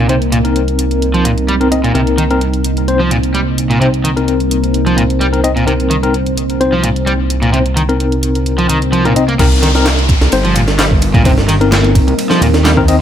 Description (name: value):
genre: breakbeat, breaks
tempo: 129 BPM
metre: 4/4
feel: straight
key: C minor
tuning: A4 = 440 Hz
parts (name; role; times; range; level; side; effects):
- deep dark ambient pad; sustained chords; 0.0-13.0 s; G3 to C5; -19 LUFS; right 1 dB; chorus, built-in reverb, sidechain pumping
- crunchy overdriven guitar; riff; 0.0-12.7 s; Bb2 to Bb3; -16 LUFS; equal; low-pass filter, ping-pong delay
- fat analog bass; bass; 0.0-13.0 s; G1 to Eb2; -15 LUFS; right 1 dB; none
- mellow tine electric piano; stabs; 0.1-13.0 s; C4 to Eb5; -16 LUFS; left 4 dB; medium tremolo, ping-pong delay
- garage drum kit; drums; 0.1-13.0 s; handclaps, hi-hat; -23 LUFS; right 1 dB; none
- swell and downlifter; sound effects; 8.7-13.0 s; none; -23 LUFS; left 3 dB; none
- breakbeat sampler-style drum kit; drums; 9.4-13.0 s; crash cymbal, kick drum, ride cymbal, snare drum; -14 LUFS; right 1 dB; none
room: little or no reverb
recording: none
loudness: -10 LUFS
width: side -9 dB against mid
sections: 0.0-9.4 A section; 9.4-13.0 B section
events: swell 8.7-9.4; drop 9.4-13.0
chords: 0.0 Cm7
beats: | 0.09 0.56 1.02 1.49 | 1.95 2.42 2.88 3.35 | 3.81 4.28 4.74 5.21 | 5.67 6.14 6.61 7.07 | 7.54 8.00 8.46 8.93 | 9.39 9.86 10.33 10.79 | 11.26 11.72 12.19 12.65